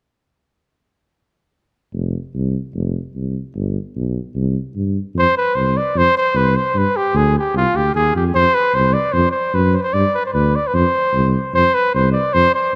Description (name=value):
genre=balkan folk, Balkan brass band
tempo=150 BPM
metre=2/4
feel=swing 55% on 16ths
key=F dorian sharp4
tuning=A4 = 440 Hz
part: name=dark tuba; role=bass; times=1.9-12.5 s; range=F1 to G2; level=-21 LUFS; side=equal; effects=none
part: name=mellow cornet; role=melody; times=5.2-12.8 s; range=F4 to D5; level=-18 LUFS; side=equal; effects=tape echo
room=light reverb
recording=none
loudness=-17 LUFS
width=mono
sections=1.9-5.1 A section; 5.1-11.5 B section; 11.5-12.8 B section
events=none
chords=1.9 F5; 3.5 G; 4.3 C5; 5.1 F5; 6.7 G5; 7.5 Cm; 8.3 F5; 9.9 G5; 10.7 F5